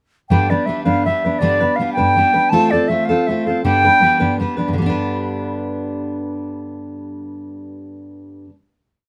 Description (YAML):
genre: celtic folk, Celtic jig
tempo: 108 BPM (dotted quarters)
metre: 6/8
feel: straight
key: G mixolydian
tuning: A4 = 438 Hz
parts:
  - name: bright wooden flute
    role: melody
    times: 0.3-4.4 s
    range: D5 to A5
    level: -18 LUFS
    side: equal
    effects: none
  - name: fingerpicked steel-string acoustic guitar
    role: accompaniment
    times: 0.3-8.6 s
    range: G2 to B4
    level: -21 LUFS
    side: equal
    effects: none
room: light reverb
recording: none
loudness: -17 LUFS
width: mono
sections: 0.3-4.7 A section; 4.7-7.0 final chord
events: none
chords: 0.3 G; 2.5 F/A; 3.6 G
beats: | 0.30 0.86 | 1.41 1.97 | 2.52 3.08 | 3.63 4.19 | 4.75 5.30 | 5.86 6.42